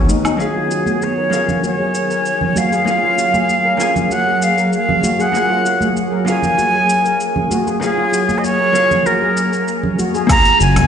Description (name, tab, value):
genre	sunset chillout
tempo	97 BPM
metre	4/4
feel	straight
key	F# major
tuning	A4 = 438 Hz
part	vintage hollow-body jazz guitar	accompaniment	0.0-10.9 s	F#2 to G#5	-21 LUFS	right 1 dB	auto-pan, tape echo
part	shimmering ambient pad	sustained chords	0.0-10.9 s	D#3 to G#5	-22 LUFS	equal	chorus, built-in reverb
part	steel pan	arpeggios	0.0-10.8 s	D#4 to A#4	-25 LUFS	left 5 dB	low-pass filter, tape echo
part	deep house drum kit	drums	0.1-10.9 s	crash cymbal, hi-hat, shaker, woodblock	-26 LUFS	equal	none
part	congas	percussion	0.1-10.1 s	none	-24 LUFS	right 2 dB	none
part	breathy bright concert flute	melody	0.4-10.9 s	G#4 to A#5	-16 LUFS	equal	tape echo
part	electronic kick drum	drums	10.3-10.4 s	none	-15 LUFS	equal	none
part	fretless electric bass	bass	10.6-10.9 s	F#1 to C#2	-12 LUFS	equal	lush chorus
room	moderate concert hall reverb, RT60 1.9 s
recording	played on a big sound system in a bare room, large studio reverb, nothing above 10.7 kHz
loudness	-13 LUFS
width	side -8 dB against mid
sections	0.4-10.3 A section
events	filter sweep on steel pan 0.4-10.3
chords	0.4 F#maj9